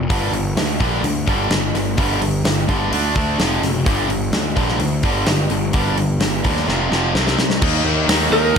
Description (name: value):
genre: hard rock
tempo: 128 BPM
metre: 4/4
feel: straight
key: G minor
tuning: A4 = 440 Hz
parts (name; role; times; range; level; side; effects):
- overdriven electric guitar; riff; 0.0-8.6 s; F2 to Eb4; -23 LUFS; right 13 dB; none
- tight distorted guitar; riff; 0.0-8.6 s; F2 to Eb4; -22 LUFS; left 12 dB; distortion
- fuzz picked electric bass; bass; 0.0-8.6 s; F1 to Eb2; -22 LUFS; equal; overdrive
- big rock drum kit; drums; 0.1-8.6 s; crash cymbal, hi-hat, kick drum, snare drum; -20 LUFS; equal; none
- lightly driven lead guitar; melody; 8.3-8.6 s; Bb4; -15 LUFS; right 2 dB; slapback echo
room: light reverb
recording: none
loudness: -16 LUFS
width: side -6 dB against mid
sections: 0.0-7.6 A section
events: drum fill 6.7-7.6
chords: 0.1 G5; 2.9 D5; 3.4 F5; 3.9 G5; 6.7 F5; 7.2 C5; 7.6 Eb5